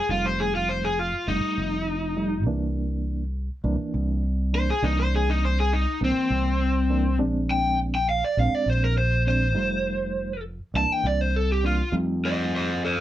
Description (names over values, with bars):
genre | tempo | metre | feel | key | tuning
straight-eighth soul blues | 101 BPM | 4/4 | straight | F mixolydian | A4 = 440 Hz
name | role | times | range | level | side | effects
overdriven semi-hollow guitar | melody | 0.0-13.0 s | C4 to A5 | -25 LUFS | left 1 dB | none
mellow reed electric piano | accompaniment | 0.1-12.7 s | E3 to Eb4 | -29 LUFS | right 2 dB | fast tremolo
fingered electric bass | bass | 0.1-13.0 s | F1 to F2 | -25 LUFS | equal | none
room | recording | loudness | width
moderate small room ambience, RT60 0.5 s | band playing live in one room | -22 LUFS | side -13 dB against mid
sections
0.0-11.9 A section; 11.9-13.0 B section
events
overdriven electric guitar solo 0.0-11.9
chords
0.0 F9; 2.5 C9; 7.2 Bb9; 9.6 F9; 10.7 C9; 11.9 F9